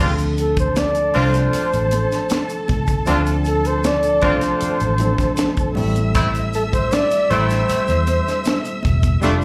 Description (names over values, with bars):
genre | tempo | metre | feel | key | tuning
lush 1970s-style soul | 78 BPM | 4/4 | straight | unclear | A4 = 436 Hz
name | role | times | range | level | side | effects
warm studio violin section | second line | 0.0-9.4 s | C4 to E6 | -31 LUFS | equal | slapback echo
tine electric piano | accompaniment | 0.0-9.4 s | F3 to A4 | -27 LUFS | equal | overdrive, slapback echo
clear horn section | stabs | 0.0-9.4 s | G3 to F4 | -24 LUFS | equal | slapback echo
vintage muted fingered electric bass | bass | 0.0-9.4 s | E1 to E2 | -23 LUFS | equal | none
tube shaker | percussion | 0.0-9.4 s | none | -42 LUFS | equal | none
tight funk drum kit | drums | 0.2-9.4 s | hi-hat, kick drum, snare drum | -25 LUFS | equal | none
breathy flugelhorn | melody | 0.4-8.8 s | A4 to D5 | -23 LUFS | equal | slapback echo
congas | percussion | 0.8-9.4 s | none | -32 LUFS | equal | none
room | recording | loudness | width
light reverb | live gig heard through the venue's PA, club reverb | -18 LUFS | mono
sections
0.0-9.4 A section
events
drum fill 9.2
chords
0.0 Dm7; 5.8 Am7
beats
0.76 1.53 2.31 | 3.08 3.84 4.61 5.38 | 6.15 6.92 7.69 8.46 | 9.23